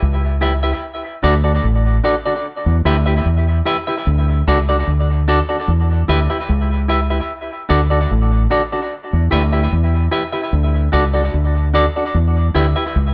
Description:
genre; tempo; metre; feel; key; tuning
roots reggae; 74 BPM; 4/4; straight; E dorian; A4 = 440 Hz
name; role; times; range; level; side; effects
deep dub fingered electric bass; bass; 0.0-13.1 s; A1 to E2; -18 LUFS; equal; none
semi-hollow electric guitar; accompaniment; 0.4-12.8 s; D4 to E5; -21 LUFS; equal; dub echo
room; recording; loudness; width
moderate studio reverb, RT60 0.8 s; band playing live in one room, nothing above 7.8 kHz; -17 LUFS; mono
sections
0.0-13.1 A section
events
none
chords
0.0 Em; 0.8 D; 2.4 Em; 4.1 D; 5.7 Em; 7.3 D; 8.9 Em; 10.5 D; 12.1 Em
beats
0.02 | 0.82 1.63 2.44 3.25 | 4.06 4.87 5.68 6.49 | 7.29 8.10 8.91 9.72 | 10.53 11.34 12.14 12.95

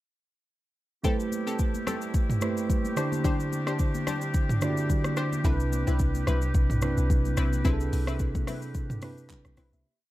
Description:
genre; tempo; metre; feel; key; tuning
amapiano; 109 BPM; 4/4; swing 55% on 16ths; unclear; A4 = 438 Hz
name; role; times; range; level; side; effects
mellow tine electric piano; accompaniment; 1.0-10.0 s; C3 to E5; -30 LUFS; right 2 dB; none
warm woodwind section; sustained chords; 1.0-9.8 s; G3 to B4; -38 LUFS; left 2 dB; sidechain pumping
punchy chord stab; stabs; 1.0-9.7 s; C4 to C5; -36 LUFS; left 4 dB; chorus, tape echo
deep house drum kit; drums; 1.0-9.8 s; handclaps, hi-hat, kick drum, rim click, shaker, toms; -28 LUFS; equal; none
congas; percussion; 1.0-9.8 s; none; -40 LUFS; left 7 dB; none
deep log drum bass; bass; 5.4-9.8 s; B1 to C2; -27 LUFS; equal; none
room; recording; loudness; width
little or no reverb; dark, warm production; -24 LUFS; side -16 dB against mid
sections
1.0-9.9 groove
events
fade-out 7.7-9.9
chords
1.0 Am7; 3.0 D7sus4; 5.4 Cmaj7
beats
| 1.04 1.59 2.15 2.70 | 3.25 3.80 4.35 4.90 | 5.45 6.00 6.55 7.10 | 7.65 8.20 8.75 9.30

